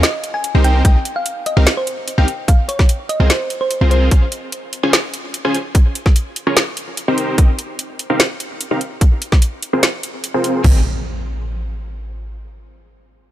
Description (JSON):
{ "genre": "future bass", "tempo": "147 BPM", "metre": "4/4", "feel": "half-time", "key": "Ab major", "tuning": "A4 = 440 Hz", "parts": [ { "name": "thumb-piano-like synth pluck", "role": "melody", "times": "0.0-4.1 s", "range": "C5 to Ab5", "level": "-22 LUFS", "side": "equal", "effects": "chorus, sidechain pumping, tape echo" }, { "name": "dense compressed supersaw", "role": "riff", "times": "0.0-10.8 s", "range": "C4 to Ab5", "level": "-21 LUFS", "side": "equal", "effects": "sidechain pumping, low-pass filter, tape echo" }, { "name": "warm 808-style bass", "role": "bass", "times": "0.0-4.1, 10.6-10.8 s", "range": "Ab1 to C2", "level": "-13 LUFS", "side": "equal", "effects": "sidechain pumping" }, { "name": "trap drum kit", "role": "drums", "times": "0.0-10.5 s", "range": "hi-hat, snare drum", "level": "-18 LUFS", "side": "equal", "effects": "none" }, { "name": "downlifter and impact", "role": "sound effects", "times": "0.2-0.8, 10.7-12.3 s", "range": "none", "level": "-26 LUFS", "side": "equal", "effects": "none" }, { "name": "trap drum kit", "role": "drums", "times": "0.8-10.7 s", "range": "crash cymbal, kick drum, toms", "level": "-12 LUFS", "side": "equal", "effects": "none" } ], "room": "little or no reverb", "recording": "none", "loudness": "-14 LUFS", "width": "side -13 dB against mid", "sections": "0.0-10.6 A section; 10.6-12.3 B section", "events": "filter sweep on supersaw synth 0.0-10.6", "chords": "0.0 Ebsus4; 0.6 Cm7; 2.3 Ab69; 4.1 Dbmaj7; 5.7 Eb9sus4; 7.2 Cm7; 8.8 Ab69; 10.6 Abmaj9" }